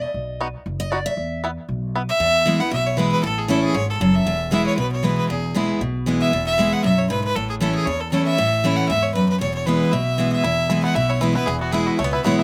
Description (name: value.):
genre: bluegrass.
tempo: 233 BPM.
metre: 4/4.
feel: swing 55% on 8ths.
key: E major.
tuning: A4 = 440 Hz.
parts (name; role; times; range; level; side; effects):
picked steel-string acoustic guitar; accompaniment; 0.0-12.4 s; E2 to E5; -23 LUFS; equal; none.
upright bass; bass; 0.0-12.4 s; E1 to E2; -31 LUFS; equal; none.
bluegrass banjo; melody; 0.4-2.0, 10.4-12.4 s; E3 to F#4; -29 LUFS; equal; none.
clear fiddle; melody; 2.1-12.4 s; F#4 to F#5; -24 LUFS; equal; none.
room: little or no reverb.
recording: recorded outdoors, with no room sound.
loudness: -20 LUFS.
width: mono.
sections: 0.0-2.2 A section; 2.2-12.4 B section.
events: steel-string acoustic guitar solo 0.0-2.2.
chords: 0.1 B; 1.2 E5; 2.2 E; 3.2 A; 4.3 E; 7.4 A; 9.4 E.